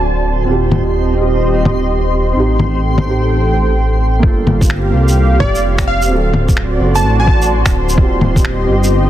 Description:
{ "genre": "future garage", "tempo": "128 BPM", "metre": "4/4", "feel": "swing 64% on 16ths", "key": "G minor", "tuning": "A4 = 435 Hz", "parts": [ { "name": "felt-muted upright piano", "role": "accompaniment", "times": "0.0-9.1 s", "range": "Bb3 to A4", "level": "-20 LUFS", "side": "right 4 dB", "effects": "vintage 12-bit sampler grit, sidechain pumping, tape echo" }, { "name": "dark analog pad", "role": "sustained chords", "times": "0.0-9.1 s", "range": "F#4 to C6", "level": "-20 LUFS", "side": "equal", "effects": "chorus, sidechain pumping" }, { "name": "dark detuned saw bass", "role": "bass", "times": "0.0-9.1 s", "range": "D1 to C2", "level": "-15 LUFS", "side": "equal", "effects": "sidechain pumping" }, { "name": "backwards swelling texture", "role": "texture", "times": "0.0-9.1 s", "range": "C4 to C5", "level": "-26 LUFS", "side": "right 1 dB", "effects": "built-in reverb" }, { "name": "electronic bongos, shaker and finger snaps", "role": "drums", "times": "0.7-8.9 s", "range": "none", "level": "-18 LUFS", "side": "left 1 dB", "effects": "soft clipping on snare" }, { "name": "electronic kick drum", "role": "drums", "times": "4.2-8.4 s", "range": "none", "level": "-13 LUFS", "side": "equal", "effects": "none" }, { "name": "plucky unison lead", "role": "melody", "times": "5.4-7.5 s", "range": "D5 to A5", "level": "-20 LUFS", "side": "right 1 dB", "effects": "tape echo" } ], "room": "light reverb, digital ambience", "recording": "dense, heavily limited modern master", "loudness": "-11 LUFS", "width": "side -12 dB against mid", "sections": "0.0-4.2 A section; 4.2-9.1 B section", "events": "none", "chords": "0.5 Eb6; 2.4 Am7b5; 4.2 Gm7; 6.1 D7; 8.0 Eb6" }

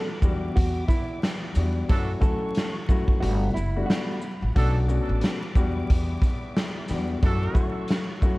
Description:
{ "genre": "hip hop, boom-bap hip-hop", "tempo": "90 BPM", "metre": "4/4", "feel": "swing 60% on 16ths", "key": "unclear", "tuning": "A4 = 441 Hz", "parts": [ { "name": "nylon-string guitar", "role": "melody", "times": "0.0-4.2 s", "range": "E4 to A4", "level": "-34 LUFS", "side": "right 2 dB", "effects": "high-pass filter, low-pass filter, analog delay" }, { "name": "dark concert grand piano", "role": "accompaniment", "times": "0.0-8.4 s", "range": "E2 to F#4", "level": "-30 LUFS", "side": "left 3 dB", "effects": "high-pass filter, low-pass filter" }, { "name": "warm symphonic string section", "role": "sustained chords", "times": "0.0-8.4 s", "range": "G3 to D6", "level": "-42 LUFS", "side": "right 1 dB", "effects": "high-pass filter, low-pass filter" }, { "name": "upright bass", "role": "bass", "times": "0.2-7.7 s", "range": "F#1 to F#2", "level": "-26 LUFS", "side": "equal", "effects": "none" }, { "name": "raw garage drum kit", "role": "drums", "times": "0.2-8.4 s", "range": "hi-hat, kick drum, shaker, snare drum", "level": "-24 LUFS", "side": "equal", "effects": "none" }, { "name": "bright trumpet section", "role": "stabs", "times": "1.9-7.7 s", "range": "F#3 to A4", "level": "-36 LUFS", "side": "right 3 dB", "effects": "high-pass filter, low-pass filter, analog delay" } ], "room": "studio reverb", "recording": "dark, warm production, vinyl crackle", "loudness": "-22 LUFS", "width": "side -21 dB against mid", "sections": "0.0-8.4 A section", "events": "none", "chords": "0.2 Em7; 1.9 Dmaj7; 3.2 Gmaj7; 4.6 Bm7; 5.6 Em7; 7.2 Dmaj7" }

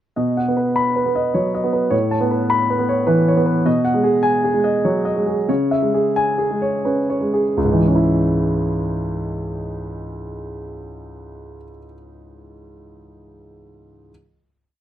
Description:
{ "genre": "neoclassical minimalist piano", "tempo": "82-105 BPM", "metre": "3/4", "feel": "rubato", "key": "C# minor", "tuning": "A4 = 440 Hz", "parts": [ { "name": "warm grand piano", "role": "solo", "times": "0.2-14.1 s", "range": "C#2 to B5", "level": "-17 LUFS", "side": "equal", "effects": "none" } ], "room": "light reverb", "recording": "none", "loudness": "-16 LUFS", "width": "side -11 dB against mid", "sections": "0.2-7.6 A section; 7.6-11.9 final chord", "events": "slowing down 2.8-7.6", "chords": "0.2 B; 1.9 Aadd9; 3.7 G#m7/B; 5.5 C#m" }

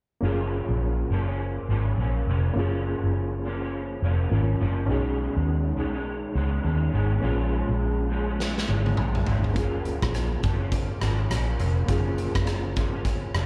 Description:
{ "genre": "indie pop, bedroom pop", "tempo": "103 BPM", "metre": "4/4", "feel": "swing 60% on 16ths", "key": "F# major", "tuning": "A4 = 440 Hz", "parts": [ { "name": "electric guitar through a small old amp", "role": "accompaniment", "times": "0.2-13.5 s", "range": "F#2 to C#4", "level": "-35 LUFS", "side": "equal", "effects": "ensemble chorus, warbly pitch drift, slapback echo" }, { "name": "reed electric piano", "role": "accompaniment", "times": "0.2-13.5 s", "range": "A#3 to A#4", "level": "-34 LUFS", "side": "equal", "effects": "fast tremolo, slapback echo" }, { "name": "vintage muted fingered electric bass", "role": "bass", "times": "0.2-13.5 s", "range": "E#1 to D#2", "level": "-28 LUFS", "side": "equal", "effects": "none" }, { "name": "raw garage drum kit", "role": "drums", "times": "8.4-13.5 s", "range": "hi-hat, kick drum, rim click, snare drum, toms", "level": "-30 LUFS", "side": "equal", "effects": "none" } ], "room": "light reverb", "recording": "live gig heard through the venue's PA, club reverb", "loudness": "-26 LUFS", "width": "mono", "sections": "0.2-13.5 A section", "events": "drum fill 8.4-9.6", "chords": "0.2 F#maj7; 4.9 B69; 7.2 A#m7; 9.6 F#maj7" }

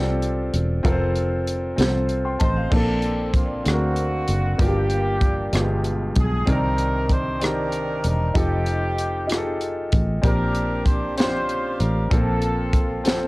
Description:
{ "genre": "slow gospel", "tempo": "64 BPM (dotted quarters)", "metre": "6/8", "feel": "straight", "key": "Bb major", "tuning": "A4 = 441 Hz", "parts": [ { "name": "bright grand piano", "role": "accompaniment", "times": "0.0-13.3 s", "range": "G2 to C6", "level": "-25 LUFS", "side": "equal", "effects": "none" }, { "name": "fingered electric bass", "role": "bass", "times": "0.0-13.3 s", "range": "E1 to D2", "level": "-24 LUFS", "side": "equal", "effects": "none" }, { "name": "crisp fusion drum kit", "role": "drums", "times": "0.2-13.2 s", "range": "crash cymbal, hi-hat, kick drum, rim click, snare drum", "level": "-23 LUFS", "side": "equal", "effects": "cassette tape" }, { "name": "warm horn section", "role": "melody", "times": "2.4-13.3 s", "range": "A#3 to C5", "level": "-26 LUFS", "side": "equal", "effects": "cassette tape" } ], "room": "light reverb", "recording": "home recording on cassette", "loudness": "-19 LUFS", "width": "side -22 dB against mid", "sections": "0.0-2.7 A section; 2.7-13.3 B section", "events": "none", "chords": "0.0 F; 2.7 Bbmaj9; 3.7 Daug7; 4.6 Gm7; 5.5 G7b9; 6.5 Cm9; 8.4 F9; 10.2 Bb69; 12.1 Gm11/Bb (rootless)" }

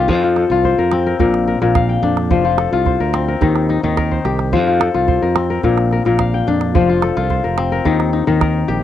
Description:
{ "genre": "west african traditional, West African string and xylophone music", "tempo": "108 BPM", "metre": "4/4", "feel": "straight", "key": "F mixolydian", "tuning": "A4 = 442 Hz", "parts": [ { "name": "kora", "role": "arpeggios", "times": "0.0-8.8 s", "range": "Bb2 to G5", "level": "-15 LUFS", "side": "left 5 dB", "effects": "cassette tape" }, { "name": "modern bright fingered electric bass", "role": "bass", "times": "0.0-8.8 s", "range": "F1 to F2", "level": "-19 LUFS", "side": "right 2 dB", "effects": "none" }, { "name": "calabash", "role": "percussion", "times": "0.1-8.8 s", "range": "none", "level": "-19 LUFS", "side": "right 5 dB", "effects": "none" } ], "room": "light reverb", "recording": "home recording on cassette", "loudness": "-13 LUFS", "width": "side -11 dB against mid", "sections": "0.0-8.8 A section", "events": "drum fill 4.1-4.5", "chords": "0.1 F; 1.2 Bb; 2.3 F; 3.4 Eb; 4.5 F; 5.6 Bb; 6.7 F; 7.9 Eb" }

